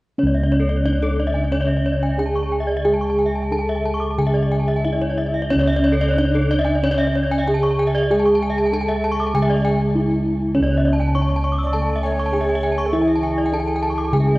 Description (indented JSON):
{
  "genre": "gamelan",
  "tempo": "90-101 BPM",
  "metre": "4/4",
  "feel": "straight",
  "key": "C# pelog",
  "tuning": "A4 = 441 Hz",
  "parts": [
    { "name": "gamelan-type bronze metallophone", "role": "melody", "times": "0.2-14.4 s", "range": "C#4 to C#5", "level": "-23 LUFS", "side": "right 1 dB", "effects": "none" },
    { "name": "gamelan-type bronze metallophone", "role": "accompaniment", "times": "0.2-14.4 s", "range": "C#3 to A3-20c", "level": "-26 LUFS", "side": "right 1 dB", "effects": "cassette tape" },
    { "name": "gamelan-type bronze metallophone", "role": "arpeggios", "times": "0.2-14.4 s", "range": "A4-20c to E6-30c", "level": "-24 LUFS", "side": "left 2 dB", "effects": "cassette tape, tape echo" },
    { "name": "gamelan-type bossed gongs", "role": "bass", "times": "0.2-14.4 s", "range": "C#2 to G#4-30c", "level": "-20 LUFS", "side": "equal", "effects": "none" },
    { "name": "gamelan-type bronze metallophone", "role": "arpeggios", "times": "0.3-14.3 s", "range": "A4-20c to D6+20c", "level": "-29 LUFS", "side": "right 2 dB", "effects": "cassette tape" },
    { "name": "breathy mellow alto recorder", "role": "second line", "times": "11.6-14.4 s", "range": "G#4-29c to D5+22c", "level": "-28 LUFS", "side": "right 2 dB", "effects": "cassette tape" }
  ],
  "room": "light reverb, studio ambience",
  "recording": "home recording on cassette",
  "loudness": "-17 LUFS",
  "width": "side -20 dB against mid",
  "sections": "0.2-10.6 A section; 10.6-14.4 B section",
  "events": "none",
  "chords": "none"
}